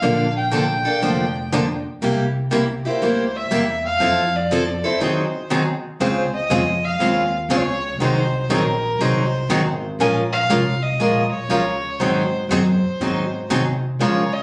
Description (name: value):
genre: acoustic string swing (jazz manouche)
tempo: 120 BPM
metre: 4/4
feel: swing 66% on 8ths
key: Db major from 6.0 s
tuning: A4 = 440 Hz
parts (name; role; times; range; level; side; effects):
- dark violin; melody; 0.0-14.4 s; Bb4 to Ab5; -25 LUFS; equal; plate reverb
- picked steel-string acoustic guitar; accompaniment; 0.0-14.2 s; C3 to Bb4; -22 LUFS; equal; none
- upright bass; bass; 0.0-14.4 s; F1 to Db3; -27 LUFS; equal; none
room: moderate studio reverb, RT60 0.6 s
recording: recorded on a phone in the room, club reverb, compression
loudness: -20 LUFS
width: mono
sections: 0.0-6.0 A section; 6.0-14.4 B section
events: break 5.0-6.0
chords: 0.0 Bbmaj7; 2.0 C7; 4.0 Fmaj7; 5.0 Ab7; 6.0 Dbmaj7; 8.0 Ab7; 10.0 Bbm7; 12.0 Ab7